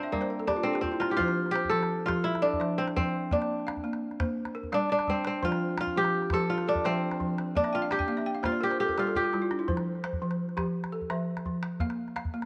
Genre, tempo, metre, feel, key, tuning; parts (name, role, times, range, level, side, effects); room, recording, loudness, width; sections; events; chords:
west african traditional, West African string and xylophone music; 113 BPM (dotted quarters); 12/8; straight; F major; A4 = 441 Hz
kora; melody; 0.0-10.6 s; Bb3 to A4; -30 LUFS; equal
balafon; arpeggios; 0.0-12.5 s; F3 to A5; -34 LUFS; equal
calabash; percussion; 0.0-12.5 s; -38 LUFS; equal
light reverb, studio reverb; -29 LUFS; mono
0.0-1.2 A section; 1.2-12.5 B section
balafon fill 0.0-1.2, 7.6-9.7; drum fill 9.2-9.7
0.1 Gm; 1.2 F; 3.3 Bb; 4.4 Gm; 5.4 F; 7.6 N.C.; 9.7 F; 11.8 Bb5